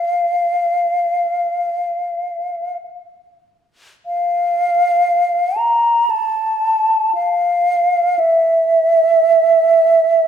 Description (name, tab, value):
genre	classical, free, expressive piece for unaccompanied flute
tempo	free time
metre	none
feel	none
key	unclear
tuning	A4 = 440 Hz
part	mellow hollow silver concert flute	solo	0.0-10.3 s	E5 to Bb5	-14 LUFS	right 1 dB	none
room	moderate recital hall reverb, RT60 1.5 s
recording	recorded in a church or concert hall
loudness	-13 LUFS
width	side -8 dB against mid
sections	0.0-4.1 A section; 4.1-10.3 B section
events	none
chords	none